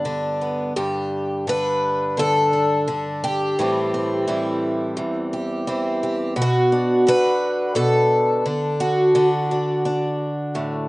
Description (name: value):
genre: folk, solo fingerstyle acoustic guitar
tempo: 86 BPM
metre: 4/4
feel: straight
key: unclear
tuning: A4 = 441 Hz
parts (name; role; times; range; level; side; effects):
- picked twelve-string acoustic guitar; solo; 0.0-10.9 s; E2 to B4; -18 LUFS; equal; slapback echo
room: little or no reverb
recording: recorded outdoors, with no room sound, nothing above 10.4 kHz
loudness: -18 LUFS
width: side -20 dB against mid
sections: 0.8-10.9 A section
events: none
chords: 0.0 G; 3.6 Am7; 6.4 Bm; 9.2 D